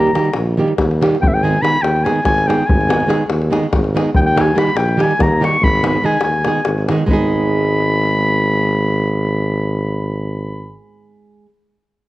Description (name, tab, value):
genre	balkan folk, Balkan wedding band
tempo	287 BPM (eighths)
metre	7/8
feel	straight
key	G# harmonic minor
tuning	A4 = 440 Hz
part	mellow clarinet	melody	0.0-10.8 s	E5 to C#6	-18 LUFS	left 1 dB	none
part	nylon-string guitar	accompaniment	0.0-11.5 s	D#3 to G#4	-19 LUFS	right 2 dB	none
part	mellow tuba	bass	0.0-10.8 s	G#1 to D#2	-18 LUFS	equal	transformer saturation
part	davul	percussion	0.1-7.3 s	none	-19 LUFS	left 2 dB	none
room	moderate recital hall reverb, RT60 1.4 s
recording	worn, warbling old tape, cassette tape, warbly pitch drift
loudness	-13 LUFS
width	side -17 dB against mid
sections	0.0-7.1 A section; 7.1-10.0 B section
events	none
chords	0.0 D#; 1.2 G#m; 4.2 D#; 5.6 G#m